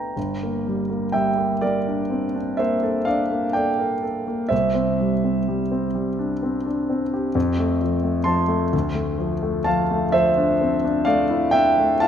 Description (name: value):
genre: classical, impressionist solo piano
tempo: 42 BPM (dotted quarters)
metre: 9/8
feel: rubato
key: G dorian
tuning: A4 = 440 Hz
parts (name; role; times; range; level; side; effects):
- clear grand piano; solo; 0.0-12.1 s; G1 to C6; -19 LUFS; equal; none
room: moderate scoring stage reverb, RT60 1.7 s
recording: none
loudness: -19 LUFS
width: side -8 dB against mid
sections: 0.2-12.1 A section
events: none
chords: 0.2 Gmadd9; 4.5 Cadd9; 7.4 F; 8.7 Dm9